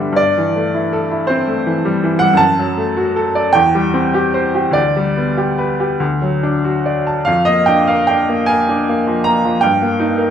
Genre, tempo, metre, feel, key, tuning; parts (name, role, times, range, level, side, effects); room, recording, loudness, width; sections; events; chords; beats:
classical, romantic nocturne for solo piano; 47-56 BPM (dotted quarters); 6/8; rubato; A4 = 440 Hz
bright upright piano; solo; 0.0-10.3 s; D2 to Bb5; -13 LUFS; equal
wet recital hall reverb, RT60 1.5 s; dark, warm production; -13 LUFS; side -8 dB against mid
0.0-10.3 A section
0.2 Am7/G; 2.4 D/F#; 3.5 C/E; 4.8 G/D; 6.0 D; 7.3 Bb7/F; 9.6 Eb/G
| 0.18 1.30 | 2.40 3.55 | 4.76 6.00 | 7.27 8.49 | 9.63